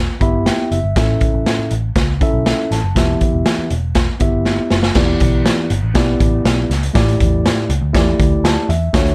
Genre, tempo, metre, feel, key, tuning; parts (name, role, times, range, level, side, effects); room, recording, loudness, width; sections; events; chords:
uptempo 1960s-style soul; 120 BPM; 4/4; straight; A mixolydian; A4 = 439 Hz
vintage muted picked electric bass; bass; 0.0-9.1 s; E1 to E2; -21 LUFS; equal
mellow tine electric piano; accompaniment; 0.2-9.1 s; A2 to B5; -21 LUFS; equal
raw garage drum kit; drums; 0.2-9.1 s; crash cymbal, hi-hat, kick drum, snare drum; -19 LUFS; equal
little or no reverb; dark, warm production; -16 LUFS; mono
0.0-5.0 A section; 5.0-9.1 B section
tine electric piano fill 0.0-1.0; drum fill 4.5-5.0
0.0 Em; 1.0 A; 3.0 Em; 5.0 Em7; 7.0 A7sus4